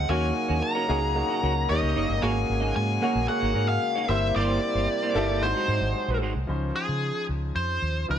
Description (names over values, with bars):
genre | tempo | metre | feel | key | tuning
pop | 113 BPM | 4/4 | straight | unclear | A4 = 441 Hz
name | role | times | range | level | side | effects
nasal lead guitar with a parked wah | melody | 0.0-8.2 s | Ab4 to Bb5 | -28 LUFS | left 1 dB | overdrive
clear baby grand piano | accompaniment | 0.0-8.2 s | F3 to Db5 | -29 LUFS | equal | wide subtle chorus
pedal harmonium | sustained chords | 0.0-6.5 s | C3 to Gb4 | -34 LUFS | left 1 dB | none
vintage muted fingered electric bass | bass | 0.0-8.2 s | Gb1 to Db3 | -27 LUFS | equal | none
clean electric guitar | riff | 0.1-6.4 s | Ab3 to Eb5 | -33 LUFS | right 5 dB | analog chorus
room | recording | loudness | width
light reverb, studio ambience | none | -23 LUFS | side -9 dB against mid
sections
0.0-6.5 A section; 6.5-8.2 B section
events
none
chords
0.1 Ebm7; 1.7 Eb7; 2.2 Ab9sus4; 4.1 C7/G; 5.4 Ab7; 6.5 Dbmaj9